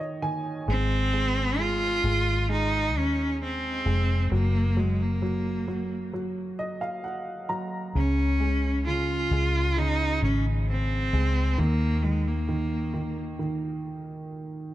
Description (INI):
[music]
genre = pop ballad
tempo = 66 BPM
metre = 4/4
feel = straight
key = Db major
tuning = A4 = 440 Hz
[part]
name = dark upright piano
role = accompaniment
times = 0.0-14.7 s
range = Db3 to Bb5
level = -31 LUFS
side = right 3 dB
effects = none
[part]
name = vintage muted fingered electric bass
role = bass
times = 0.0-14.7 s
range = F1 to Eb2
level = -26 LUFS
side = left 1 dB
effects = none
[part]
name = warm cello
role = melody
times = 0.7-13.2 s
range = Ab3 to F4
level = -28 LUFS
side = equal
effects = tape echo
[sound]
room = light reverb, small room ambience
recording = echo-heavy mix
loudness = -24 LUFS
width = side -14 dB against mid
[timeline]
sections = 0.0-14.7 A section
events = upright piano fill 0.0-0.7, 6.1-8.0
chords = 0.0 Eb5; 0.7 Ab; 4.3 Gb; 8.0 Db; 11.6 Eb5